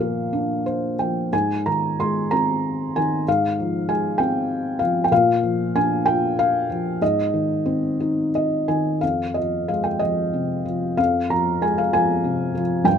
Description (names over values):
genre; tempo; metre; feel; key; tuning
classical, lyrical solo piano; 58-66 BPM (dotted quarters); 6/8; rubato; Ab lydian, F minor from 9.0 s; A4 = 441 Hz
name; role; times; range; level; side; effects
felt-muted upright piano; solo; 0.0-13.0 s; F2 to C6; -19 LUFS; equal; none
room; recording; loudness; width
little or no reverb; close, detailed microphones; -19 LUFS; side -7 dB against mid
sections
0.0-9.0 A section; 9.0-13.0 B section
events
felt piano fill 0.3-1.3, 8.0-9.0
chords
0.0 Bb; 1.3 Ab; 3.3 Fmadd9/Ab; 5.1 Bb; 7.0 Ab; 9.0 Fm